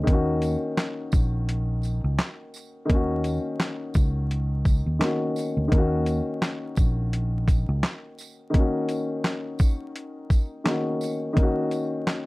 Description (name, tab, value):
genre	hip hop, boom-bap hip-hop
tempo	85 BPM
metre	4/4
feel	swing 56% on 16ths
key	Eb minor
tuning	A4 = 440 Hz
part	dark upright piano	accompaniment	0.0-12.3 s	Eb3 to Gb4	-28 LUFS	left 2 dB	cassette tape, high-pass filter, low-pass filter
part	fingered electric bass	bass	0.0-7.8 s	Bb1 to Eb2	-25 LUFS	equal	none
part	boom bap sampler-style drum kit	drums	0.1-12.3 s	handclaps, hi-hat, kick drum, shaker, snare drum	-22 LUFS	equal	none
part	tambourine	percussion	0.4-11.9 s	none	-46 LUFS	right 7 dB	none
room	light reverb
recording	vinyl crackle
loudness	-22 LUFS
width	side -21 dB against mid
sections	0.0-12.3 A section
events	none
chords	0.0 Ebm7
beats	| 0.07 0.78 1.48 2.19 | 2.90 3.60 4.31 5.01 | 5.72 6.42 7.13 7.84 | 8.54 9.25 9.95 10.66 | 11.37 12.07